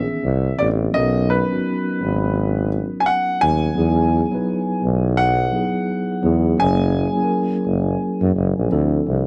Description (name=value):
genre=R&B, neo-soul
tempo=85 BPM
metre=4/4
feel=swing 60% on 16ths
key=unclear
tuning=A4 = 440 Hz
part: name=clear baby grand piano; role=melody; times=0.0-8.7 s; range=B4 to G#5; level=-25 LUFS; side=equal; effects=tape echo
part: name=mellow tine electric piano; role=accompaniment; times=0.0-9.3 s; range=D#3 to B4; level=-24 LUFS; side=equal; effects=none
part: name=clear tuba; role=bass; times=0.0-9.2 s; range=F#1 to F#2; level=-21 LUFS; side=equal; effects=none
room=small room ambience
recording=dry, close 1970s-style studio recording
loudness=-19 LUFS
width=mono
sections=0.0-9.3 A section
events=none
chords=0.2 Cmaj9; 0.9 Bmaj9; 3.8 Emaj9; 6.6 F#9; 8.7 Dm9